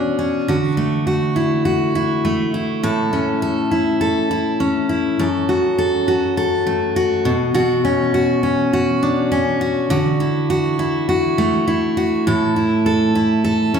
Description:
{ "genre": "pop", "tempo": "102 BPM", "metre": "4/4", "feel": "swing 60% on 16ths", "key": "F# minor", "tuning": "A4 = 440 Hz", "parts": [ { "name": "picked steel-string acoustic guitar", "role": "solo", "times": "0.0-13.8 s", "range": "F#2 to A4", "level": "-16 LUFS", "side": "equal", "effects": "none" } ], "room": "wet large studio reverb, RT60 1.3 s", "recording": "band playing live in one room", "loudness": "-16 LUFS", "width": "side -6 dB against mid", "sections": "0.0-5.2 A section; 5.2-13.8 B section", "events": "none", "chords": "0.5 Dadd9; 2.8 A; 5.2 F#m; 7.3 Bmadd9; 9.9 Dadd9; 12.3 A5" }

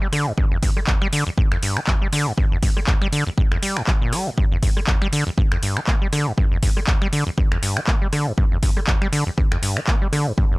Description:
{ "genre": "acid house", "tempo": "120 BPM", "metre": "4/4", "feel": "swing 56% on 16ths", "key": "G minor", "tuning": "A4 = 440 Hz", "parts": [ { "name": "acid bass, saw", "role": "riff", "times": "0.0-10.6 s", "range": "F2 to Bb3", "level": "-23 LUFS", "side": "equal", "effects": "overdrive, cassette tape, sidechain pumping, analog delay" }, { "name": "booming analog drum machine", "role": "drums", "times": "0.1-10.2 s", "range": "finger snaps, handclaps, hi-hat, rim click", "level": "-26 LUFS", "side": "equal", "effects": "none" }, { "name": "electronic kick drum", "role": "drums", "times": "0.4-10.5 s", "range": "none", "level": "-19 LUFS", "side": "equal", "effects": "none" } ], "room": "little or no reverb", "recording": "dry, gritty hardware recording, transformer saturation", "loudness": "-18 LUFS", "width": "side -25 dB against mid", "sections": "0.0-10.6 A section", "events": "filter sweep on acid bass 0.0-10.6", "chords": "none" }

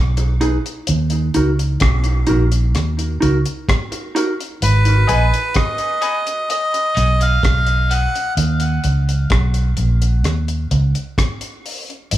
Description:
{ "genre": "dub reggae", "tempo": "64 BPM", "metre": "4/4", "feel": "straight", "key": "unclear", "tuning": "A4 = 441 Hz", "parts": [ { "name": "vintage muted fingered electric bass", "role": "bass", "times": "0.0-12.2 s", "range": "G#1 to D#2", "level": "-15 LUFS", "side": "equal", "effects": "none" }, { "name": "mellow electric guitar", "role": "accompaniment", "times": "0.2-4.3 s", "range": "D#4 to B4", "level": "-22 LUFS", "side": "right 1 dB", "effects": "high-pass filter, tape echo" }, { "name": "deep reggae drum kit", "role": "drums", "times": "0.2-12.2 s", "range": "hi-hat, kick drum, rim click", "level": "-21 LUFS", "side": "equal", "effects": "none" }, { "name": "melodica", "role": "melody", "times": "4.6-8.3 s", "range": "B4 to F#5", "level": "-20 LUFS", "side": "equal", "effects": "tape echo" }, { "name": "mellow tonewheel organ", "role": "accompaniment", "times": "4.9-12.0 s", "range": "G#2 to D#4", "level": "-37 LUFS", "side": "left 1 dB", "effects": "none" }, { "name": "clear baby grand piano", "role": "stabs", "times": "5.1-8.0 s", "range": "D#4 to B4", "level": "-26 LUFS", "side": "left 3 dB", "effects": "high-pass filter, tape echo" } ], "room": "light reverb, small room ambience", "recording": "studio ambience", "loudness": "-15 LUFS", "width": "side -14 dB against mid", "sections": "0.0-12.2 A section", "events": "break 0.0-4.6; filter sweep 0.9-12.1", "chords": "0.0 G#m; 0.9 D#m; 4.6 G#m; 8.4 D#m" }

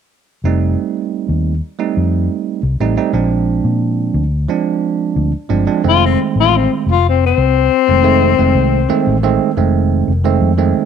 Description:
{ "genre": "straight-eighth soul blues", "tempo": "89 BPM", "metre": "4/4", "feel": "straight", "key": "F mixolydian", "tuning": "A4 = 442 Hz", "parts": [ { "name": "vintage muted fingered electric bass", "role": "bass", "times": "0.4-10.8 s", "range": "F1 to Bb2", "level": "-16 LUFS", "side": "left 1 dB", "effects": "none" }, { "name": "bell-like tine electric piano", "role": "accompaniment", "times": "0.5-10.9 s", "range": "Eb3 to Eb4", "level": "-16 LUFS", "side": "right 9 dB", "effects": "none" }, { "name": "breathy tenor saxophone", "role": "melody", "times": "5.9-9.2 s", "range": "C4 to F4", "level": "-13 LUFS", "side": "left 14 dB", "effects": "none" } ], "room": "light reverb, studio reverb", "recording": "1960s-style stereo with parts hard left and right", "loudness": "-12 LUFS", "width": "side -7 dB against mid", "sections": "0.5-5.9 A section; 5.9-10.9 B section", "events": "none", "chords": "0.5 F7; 3.2 Bb7; 5.9 F7#9" }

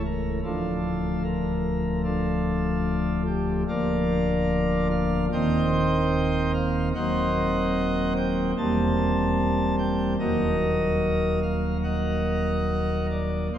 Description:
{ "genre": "classical, chorale-style piece for pipe organ", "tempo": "74 BPM", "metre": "4/4", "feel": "rubato", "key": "unclear", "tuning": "A4 = 442 Hz", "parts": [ { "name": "pipe organ, sparkling flutes", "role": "solo", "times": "0.0-13.6 s", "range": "C#1 to A5", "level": "-22 LUFS", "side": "equal", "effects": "none" } ], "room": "wet church reverb, RT60 3.5 s", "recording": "heard from further back in the room", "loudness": "-22 LUFS", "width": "side -10 dB against mid", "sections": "0.0-13.6 A section", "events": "none", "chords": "0.5 Dm; 3.7 Bb/D; 5.3 Cm7/Eb; 7.0 Cm7b5/Eb; 8.6 C7/E; 10.2 Ebm" }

